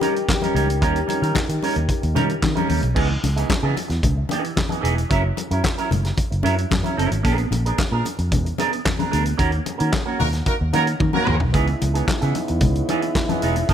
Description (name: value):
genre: disco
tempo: 112 BPM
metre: 4/4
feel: straight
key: C# dorian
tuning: A4 = 441 Hz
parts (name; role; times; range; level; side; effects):
- electric guitar with an envelope filter; accompaniment; 0.0-13.7 s; E3 to A#4; -24 LUFS; right 5 dB; none
- mellow French horn section; sustained chords; 0.0-2.9, 11.5-13.7 s; C#3 to A#4; -26 LUFS; left 3 dB; none
- warm soul drum kit; drums; 0.0-13.7 s; crash cymbal, handclaps, hi-hat, kick drum, snare drum, toms; -24 LUFS; equal; none
- congas; percussion; 0.0-13.4 s; none; -28 LUFS; left 6 dB; none
- vintage muted fingered electric bass; bass; 0.5-13.7 s; E1 to D#3; -21 LUFS; equal; none
- mellow horn section; stabs; 10.2-11.4 s; A#3 to A#4; -25 LUFS; right 1 dB; none
room: light reverb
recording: none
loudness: -18 LUFS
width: side -9 dB against mid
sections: 0.0-3.0 A section; 3.0-13.7 B section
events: band accent 9.4-11.5; drum fill 11.0-11.5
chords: 0.0 D#7; 3.0 C#m9; 5.1 F#7; 7.2 A#7b9; 9.4 D#m7; 11.5 C#m9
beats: 0.28 | 0.82 1.35 1.89 2.43 | 2.96 3.50 4.04 4.57 | 5.11 5.64 6.18 6.71 | 7.25 7.79 8.32 8.86 | 9.39 9.93 10.47 11.01 | 11.54 12.08 12.62 13.15 | 13.69